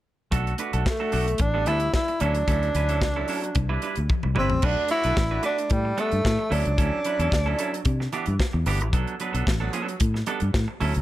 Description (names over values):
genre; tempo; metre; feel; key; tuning
disco; 112 BPM; 4/4; straight; unclear; A4 = 440 Hz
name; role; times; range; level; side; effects
semi-hollow electric guitar; accompaniment; 0.3-11.0 s; E3 to C#5; -30 LUFS; right 4 dB; none
fingered electric bass; bass; 0.3-11.0 s; G1 to C3; -25 LUFS; left 1 dB; none
tight funk drum kit; drums; 0.3-11.0 s; crash cymbal, hi-hat, kick drum, snare drum, toms; -27 LUFS; left 1 dB; none
breathy tenor saxophone; melody; 0.9-8.1 s; G3 to E4; -26 LUFS; equal; none
room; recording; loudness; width
small room ambience; none; -22 LUFS; side -15 dB against mid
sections
0.3-4.6 A section; 4.6-11.0 B section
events
drum fill 4.1-4.6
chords
0.3 Bm7; 1.4 A9sus4; 2.2 Dmaj9; 3.6 Cmaj9; 4.6 Bm7; 5.7 A9sus4; 6.5 Dmaj9; 7.9 Cmaj9; 8.9 Bm7; 10.0 A9sus4